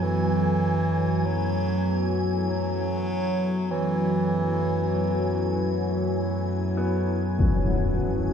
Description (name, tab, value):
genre	dark ambient drone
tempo	free time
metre	none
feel	none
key	F# minor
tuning	A4 = 440 Hz
part	warm bass clarinet	melody	0.0-6.2 s	E3 to F#3	-27 LUFS	right 1 dB	shimmer reverb, ping-pong delay
part	deep dark ambient pad	sustained chords	0.0-8.3 s	F#3 to C#5	-30 LUFS	equal	chorus, built-in reverb, shimmer reverb
part	clear baby grand piano	arpeggios	0.0-8.3 s	B3	-36 LUFS	right 2 dB	shimmer reverb, ping-pong delay
part	analog drone	drone	0.0-8.3 s	F#2 to F#3	-26 LUFS	left 1 dB	chorus
part	icy glass pad	texture	0.0-8.3 s	G#5	-37 LUFS	equal	chorus, built-in reverb, shimmer reverb
part	impact	percussion	7.4-7.6 s	none	-23 LUFS	left 1 dB	low-pass filter on sfx
room	wet cathedral reverb, RT60 6.8 s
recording	dark, warm production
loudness	-22 LUFS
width	side -7 dB against mid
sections	0.0-8.3 A section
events	none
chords	0.0 F#madd9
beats	free time